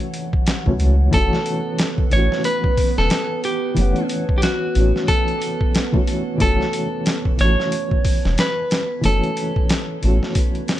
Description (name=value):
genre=trip hop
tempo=91 BPM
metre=4/4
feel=swing 59% on 16ths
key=F# minor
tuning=A4 = 439 Hz
part: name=felt-muted upright piano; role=accompaniment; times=0.0-10.8 s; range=E3 to F#5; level=-24 LUFS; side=left 1 dB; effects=tremolo, tape echo
part: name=warbly tape-like pad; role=sustained chords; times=0.0-10.8 s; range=E3 to F#5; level=-29 LUFS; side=right 2 dB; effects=chorus, built-in reverb, vintage 12-bit sampler grit
part: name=boom bap sampler-style drum kit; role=drums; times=0.0-10.8 s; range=hi-hat, kick drum, snare drum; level=-20 LUFS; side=equal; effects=vintage 12-bit sampler grit
part: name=soft dub sub bass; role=bass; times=0.7-10.2 s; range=E1 to C#2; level=-17 LUFS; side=equal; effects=none
part: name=clean electric guitar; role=melody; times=1.1-10.8 s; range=F#4 to C#5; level=-23 LUFS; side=right 1 dB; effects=dub echo
room=digital ambience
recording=none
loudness=-17 LUFS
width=side -13 dB against mid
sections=0.0-10.8 A section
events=none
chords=0.0 F#m7